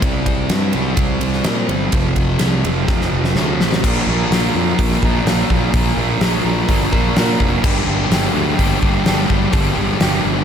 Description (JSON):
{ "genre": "quiet-loud alternative rock", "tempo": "126 BPM", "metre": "4/4", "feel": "straight", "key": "unclear", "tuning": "A4 = 440 Hz", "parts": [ { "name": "thick fuzz guitar", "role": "riff", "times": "0.0-10.4 s", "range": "F2 to Bb4", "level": "-18 LUFS", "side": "right 1 dB", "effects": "distortion" }, { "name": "fuzz fingered electric bass", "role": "bass", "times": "0.0-10.4 s", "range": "F1 to Bb2", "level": "-21 LUFS", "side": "equal", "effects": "overdrive" }, { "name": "huge arena drum kit", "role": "drums", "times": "0.0-10.1 s", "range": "crash cymbal, hi-hat, kick drum, ride cymbal, snare drum", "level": "-18 LUFS", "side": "equal", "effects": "none" } ], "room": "studio reverb", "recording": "none", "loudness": "-14 LUFS", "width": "side -8 dB against mid", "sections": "0.0-3.8 A section; 3.8-10.4 B section", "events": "drum fill 2.9-3.8", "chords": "0.0 C5; 1.9 F; 3.8 Bb; 7.6 Gm" }